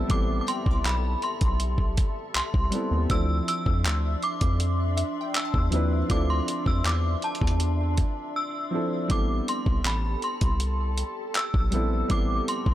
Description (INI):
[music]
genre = contemporary R&B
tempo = 80 BPM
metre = 4/4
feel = straight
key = A minor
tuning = A4 = 439 Hz
[part]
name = synth chime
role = melody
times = 0.0-12.7 s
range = A5 to E6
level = -31 LUFS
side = equal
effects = ensemble chorus, ping-pong delay
[part]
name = warm baby grand piano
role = accompaniment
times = 0.0-12.7 s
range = E3 to B4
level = -32 LUFS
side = equal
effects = none
[part]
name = glassy FM pad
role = sustained chords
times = 0.0-12.7 s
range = D4 to C6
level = -35 LUFS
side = equal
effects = ensemble chorus, built-in reverb, sidechain pumping
[part]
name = rubbery square bass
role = bass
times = 0.0-12.7 s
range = A1 to F2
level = -26 LUFS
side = equal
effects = none
[part]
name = dusty soul sampler-style drum kit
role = drums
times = 0.1-12.7 s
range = handclaps, hi-hat, kick drum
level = -26 LUFS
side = equal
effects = none
[part]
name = glassy wavetable pluck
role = texture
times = 0.5-7.6 s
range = E5 to D6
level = -39 LUFS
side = left 4 dB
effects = chorus, ping-pong delay
[sound]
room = digital ambience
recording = none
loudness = -23 LUFS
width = side -13 dB against mid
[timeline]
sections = 0.0-12.7 A section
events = break 8.3-9.1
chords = 0.0 Am9; 3.1 Dm9; 9.1 Am9